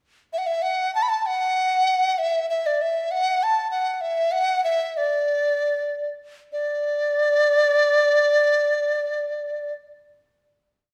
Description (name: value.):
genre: chinese traditional, Chinese chamber ensemble.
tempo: 67-100 BPM.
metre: 2/4.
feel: rubato.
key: D gong mode.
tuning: A4 = 440 Hz.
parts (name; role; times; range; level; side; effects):
large dizi; solo; 0.3-9.7 s; D5 to B5; -22 LUFS; equal; none.
room: moderate recital hall reverb, RT60 1.3 s.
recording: none.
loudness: -22 LUFS.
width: mono.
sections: 0.0-1.3 pickup bar; 1.3-6.5 A section; 6.5-10.0 final note.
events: slowing down 3.7-6.5.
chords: none.